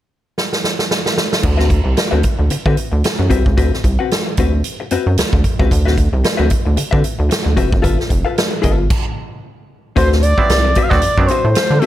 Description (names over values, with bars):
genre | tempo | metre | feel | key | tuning
funk | 113 BPM | 4/4 | swing 56% on 16ths | D mixolydian | A4 = 442 Hz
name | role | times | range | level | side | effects
swinging big-band drum kit | drums | 0.4-11.9 s | crash cymbal, hi-hat, kick drum, snare drum | -17 LUFS | right 1 dB | none
vintage hollow-body jazz guitar | accompaniment | 1.4-11.9 s | C4 to F#5 | -21 LUFS | left 7 dB | plate reverb
rubbery square bass | bass | 1.4-11.8 s | F1 to D3 | -15 LUFS | equal | none
expressive portamento lead | melody | 10.0-11.9 s | A4 to F5 | -16 LUFS | equal | chorus, plate reverb
muted clav | stabs | 10.4-11.5 s | F#3 to F#4 | -21 LUFS | right 6 dB | plate reverb
room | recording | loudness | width
little or no reverb | none | -13 LUFS | side -13 dB against mid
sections
0.0-1.4 A section; 1.4-10.0 B section; 10.0-11.9 C section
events
drum fill 0.4-1.4; stop 8.9-10.0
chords
0.0 N.C.; 1.4 D13; 7.8 G13; 10.0 D13